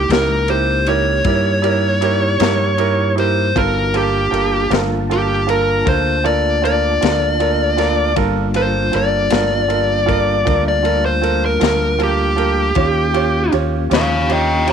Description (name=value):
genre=slow blues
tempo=52 BPM (dotted quarters)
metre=12/8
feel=straight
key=G minor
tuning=A4 = 440 Hz
part: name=dark smooth lead guitar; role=melody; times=0.0-14.7 s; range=G4 to G5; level=-17 LUFS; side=left 1 dB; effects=overdrive
part: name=mellow tonewheel organ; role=sustained chords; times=0.0-14.7 s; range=G3 to A5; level=-24 LUFS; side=left 1 dB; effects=slow rotary speaker, chorus vibrato
part: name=fingered electric bass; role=bass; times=0.0-14.7 s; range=G1 to G2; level=-20 LUFS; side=left 1 dB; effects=none
part: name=bright upright piano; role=accompaniment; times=0.1-14.7 s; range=E4 to Db5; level=-21 LUFS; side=right 13 dB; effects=none
part: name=crunchy breakbeat drum kit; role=drums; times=0.1-14.7 s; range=kick drum, ride cymbal, snare drum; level=-23 LUFS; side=left 7 dB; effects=none
room=studio ambience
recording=1960s-style stereo with parts hard left and right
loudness=-14 LUFS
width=side -7 dB against mid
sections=0.0-14.7 A section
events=lead electric guitar solo 0.0-14.7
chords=0.0 C#dim7; 3.6 Gm9; 12.8 Eb7